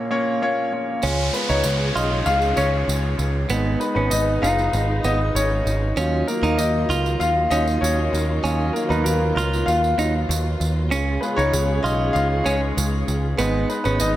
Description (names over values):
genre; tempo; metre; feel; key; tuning
piano-driven pop; 97 BPM; 4/4; straight; unclear; A4 = 440 Hz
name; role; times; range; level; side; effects
clear baby grand piano; accompaniment; 0.0-14.2 s; Bb1 to F5; -22 LUFS; left 2 dB; none
noise sweep and downlifter; sound effects; 0.0-6.0 s; none; -31 LUFS; equal; none
dark studio string section; sustained chords; 1.0-14.2 s; Db3 to Ab4; -29 LUFS; right 1 dB; none
direct-recorded clean electric guitar; riff; 1.0-14.0 s; Cb4 to F4; -26 LUFS; right 4 dB; phaser
picked electric bass; bass; 1.0-14.2 s; Gb1 to Eb2; -22 LUFS; equal; none
tambourine; percussion; 1.0-14.1 s; none; -33 LUFS; right 6 dB; none
room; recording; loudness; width
light reverb, studio reverb; none; -18 LUFS; side -13 dB against mid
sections
0.0-1.0 A section; 1.0-14.2 B section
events
grand piano solo 1.0-14.2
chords
0.0 Bbm; 1.0 Db; 3.5 Abm; 6.0 Ebmadd9; 10.9 Db; 13.4 Abm